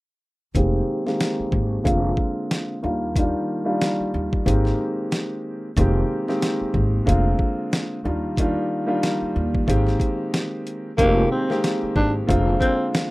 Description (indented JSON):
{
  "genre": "hip hop, boom-bap hip-hop",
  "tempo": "92 BPM",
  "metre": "4/4",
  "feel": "swing 58% on 16ths",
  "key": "F dorian",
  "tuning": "A4 = 441 Hz",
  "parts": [
    { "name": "boom bap sampler-style drum kit", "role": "drums", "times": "0.5-13.1 s", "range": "hi-hat, kick drum, snare drum", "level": "-24 LUFS", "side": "equal", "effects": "none" },
    { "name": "dark grand piano", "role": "accompaniment", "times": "0.6-13.1 s", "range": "D3 to G4", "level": "-23 LUFS", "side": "equal", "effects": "cassette tape, high-pass filter, low-pass filter" },
    { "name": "upright bass", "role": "bass", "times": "0.6-12.5 s", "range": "F1 to Eb2", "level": "-23 LUFS", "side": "equal", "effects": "none" },
    { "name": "growling tenor saxophone", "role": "melody", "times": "11.0-12.9 s", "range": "Bb3 to D4", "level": "-22 LUFS", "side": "equal", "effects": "high-pass filter, low-pass filter, ping-pong delay" }
  ],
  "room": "little or no reverb",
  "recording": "rough home demo mix",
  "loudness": "-20 LUFS",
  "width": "side -20 dB against mid",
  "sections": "0.5-11.0 A section; 11.0-13.1 B section",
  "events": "filter sweep on grand piano 0.5-11.0",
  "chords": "0.5 Fm11; 1.9 Bb7/F; 2.8 Ebmaj7; 4.5 Abmaj7; 5.8 Fm11; 7.1 Bb7/F; 8.0 Ebmaj7; 9.7 Abmaj7; 11.0 Fm11; 12.3 Bb7/F",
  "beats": "| 0.55 1.20 1.85 2.50 | 3.16 3.81 4.46 5.11 | 5.77 6.42 7.07 7.72 | 8.37 9.03 9.68 10.33 | 10.98 11.63 12.29 12.94"
}